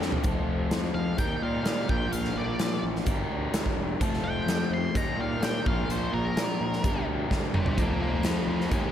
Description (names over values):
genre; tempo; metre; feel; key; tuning
classic rock; 127 BPM; 4/4; straight; unclear; A4 = 440 Hz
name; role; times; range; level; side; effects
crunchy overdriven guitar; riff; 0.0-8.9 s; G2 to Bb4; -30 LUFS; left 2 dB; slapback echo
fuzz fingered electric bass; bass; 0.0-8.9 s; E1 to Bb2; -32 LUFS; equal; overdrive
big rock drum kit; drums; 0.0-8.8 s; hi-hat, kick drum, snare drum, toms; -29 LUFS; equal; none
tambourine; percussion; 0.0-0.1, 8.2-8.3 s; none; -52 LUFS; left 7 dB; none
octave-fuzz lead guitar; melody; 0.9-8.9 s; Eb4 to C6; -34 LUFS; equal; distortion
room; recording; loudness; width
light reverb, studio reverb; none; -25 LUFS; side -10 dB against mid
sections
0.2-8.9 A section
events
drum fill 0.0, 7.3-7.8; lead electric guitar solo 0.2-8.9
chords
0.2 F; 1.2 Eb; 1.9 Bb; 3.1 Gm; 4.0 F; 5.0 Eb; 5.7 Bb; 6.8 Gm; 7.8 F